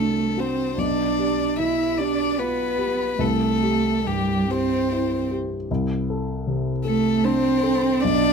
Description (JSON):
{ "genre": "classical, slow romantic movement for piano trio", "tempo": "50 BPM (dotted quarters)", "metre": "6/8", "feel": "rubato", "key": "unclear", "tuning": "A4 = 440 Hz", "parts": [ { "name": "warm violin", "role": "melody", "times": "0.0-8.3 s", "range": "G4 to E5", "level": "-26 LUFS", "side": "left 8 dB", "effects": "none" }, { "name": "dark cello", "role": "second line", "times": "0.0-8.3 s", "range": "G3 to E4", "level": "-22 LUFS", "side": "right 6 dB", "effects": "none" }, { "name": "dark grand piano", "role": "accompaniment", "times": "0.0-8.3 s", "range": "B1 to A4", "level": "-25 LUFS", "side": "left 2 dB", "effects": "none" } ], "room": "light reverb", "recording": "minimal, uncompressed stereo recording", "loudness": "-20 LUFS", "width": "side -6 dB against mid", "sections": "0.0-8.3 A section", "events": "none", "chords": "0.0 D7/C; 0.8 G7/B; 3.2 C; 5.7 D5/C" }